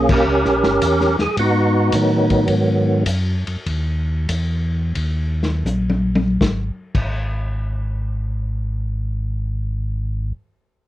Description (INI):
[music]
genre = soul jazz organ trio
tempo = 76-109 BPM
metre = 4/4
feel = swing 68% on 8ths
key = unclear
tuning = A4 = 440 Hz
[part]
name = percussive tonewheel organ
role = melody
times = 0.0-3.0 s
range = D#3 to A#4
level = -16 LUFS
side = right 1 dB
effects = slow rotary speaker, overdrive, chorus vibrato
[part]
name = mellow tonewheel organ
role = bass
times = 0.0-10.3 s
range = G1 to A2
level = -21 LUFS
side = equal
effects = overdrive, chorus vibrato, slow rotary speaker
[part]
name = vintage drum kit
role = drums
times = 0.1-7.1 s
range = crash cymbal, hi-hat, kick drum, ride cymbal, snare drum, toms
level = -23 LUFS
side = left 2 dB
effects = none
[sound]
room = light reverb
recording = worn, warbling old tape, cassette tape, warbly pitch drift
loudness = -17 LUFS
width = side -14 dB against mid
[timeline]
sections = 0.0-6.4 A section; 6.4-9.6 B section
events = band accent 0.0; slowing down 1.4-6.4; drum fill 5.7-6.4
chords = 0.0 D#7b9 (rootless); 1.4 G#m7; 3.7 D#5; 6.4 N.C.